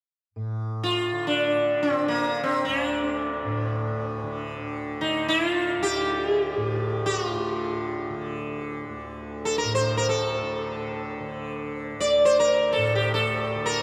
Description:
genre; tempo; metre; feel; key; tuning
indian classical; free time; none; none; D raga bhairavi; A4 = 439 Hz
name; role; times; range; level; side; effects
tanpura; drone; 0.4-13.8 s; D2 to D3; -33 LUFS; equal; none
sitar; melody; 0.8-13.8 s; Bb3 to D5; -26 LUFS; equal; none
room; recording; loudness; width
wet cathedral reverb, RT60 6.9 s; in a vast, echoing space; -26 LUFS; mono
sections
0.4-13.8 A section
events
none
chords
none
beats
free time

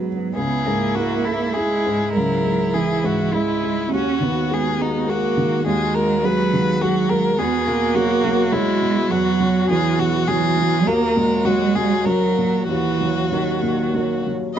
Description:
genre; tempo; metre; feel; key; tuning
neoclassical piano and strings; 95-106 BPM; 3/4; rubato; unclear; A4 = 440 Hz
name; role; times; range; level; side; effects
warm cello; second line; 0.0-14.3 s; D#3 to C#4; -21 LUFS; right 5 dB; none
felt-muted upright piano; accompaniment; 0.0-14.6 s; C#2 to A#4; -22 LUFS; left 2 dB; none
rich violin; melody; 0.4-14.6 s; D#4 to D#5; -23 LUFS; left 3 dB; none
clear viola; accompaniment; 0.4-14.3 s; E4 to F#4; -28 LUFS; right 3 dB; none
room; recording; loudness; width
light reverb; nothing above 7.8 kHz; -17 LUFS; side -9 dB against mid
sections
0.4-14.6 A section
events
none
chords
0.4 C#m; 3.9 G#m7/D#; 7.4 Eadd9; 10.9 D#m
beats
| 0.36 0.97 1.56 | 2.15 2.75 3.33 | 3.92 4.50 5.08 | 5.66 6.24 6.82 | 7.39 7.96 8.53 | 9.11 9.69 10.28 | 10.87 11.46 12.06 | 12.69 13.32 13.95 | 14.57

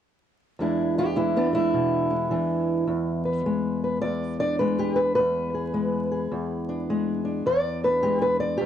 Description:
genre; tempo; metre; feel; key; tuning
acoustic country blues, solo or duo; 105 BPM; 4/4; swing 63% on 8ths; E mixolydian; A4 = 444 Hz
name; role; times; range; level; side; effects
fingerpicked old ladder-braced acoustic guitar; solo; 0.6-8.7 s; E2 to D5; -22 LUFS; equal; none
room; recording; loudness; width
little or no reverb; dry, close 1970s-style studio recording, vinyl crackle; -22 LUFS; side -9 dB against mid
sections
0.6-8.7 A section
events
none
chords
0.6 E7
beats
| 0.58 1.16 1.73 2.30 | 2.88 3.45 4.02 4.60 | 5.17 5.74 6.32 6.89 | 7.46 8.04 8.61

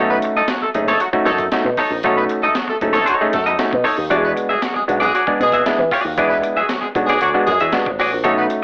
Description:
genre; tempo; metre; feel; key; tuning
funk; 116 BPM; 4/4; straight; unclear; A4 = 438 Hz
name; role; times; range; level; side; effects
semi-hollow electric guitar; accompaniment; 0.0-8.5 s; D#4 to E5; -19 LUFS; equal; cassette tape
mellow clav; stabs; 0.0-8.6 s; G3 to A4; -19 LUFS; equal; cassette tape
picked electric bass with an envelope filter; bass; 0.0-8.5 s; F#1 to E3; -22 LUFS; equal; none
warm horn section; second line; 0.1-8.5 s; F#3 to B4; -21 LUFS; equal; cassette tape
breakbeat sampler-style drum kit; drums; 0.2-8.6 s; hi-hat, kick drum, snare drum; -27 LUFS; equal; cassette tape
room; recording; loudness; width
moderate spring reverb, RT60 2.1 s; home recording on cassette, AM radio sound; -14 LUFS; side -37 dB against mid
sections
0.0-8.6 A section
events
none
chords
0.0 B9; 4.1 E9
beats
0.48 1.00 1.52 | 2.04 2.56 3.07 3.59 | 4.11 4.63 5.14 5.66 | 6.18 6.70 7.21 7.73 | 8.25

